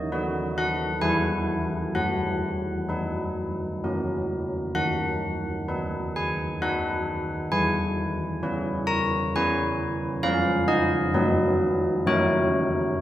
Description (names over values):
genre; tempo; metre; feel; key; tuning
classical, tune for church bells; 65 BPM; 3/4; straight; B major; A4 = 440 Hz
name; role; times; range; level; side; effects
old church bells; solo; 0.0-13.0 s; D#3 to A#5; -23 LUFS; equal; none
room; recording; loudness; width
wet recital hall reverb, RT60 1.4 s; none; -23 LUFS; side -13 dB against mid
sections
0.0-13.0 A section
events
none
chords
0.0 B/D#; 1.0 E; 2.0 B/F#; 3.8 F#; 4.8 B/D#; 7.5 C#m7/E; 10.2 C#7/E#; 11.1 B/F#; 12.1 F#7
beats
0.14 1.04 | 1.97 2.90 3.84 | 4.76 5.69 6.61 | 7.54 8.44 9.35 | 10.25 11.14 12.06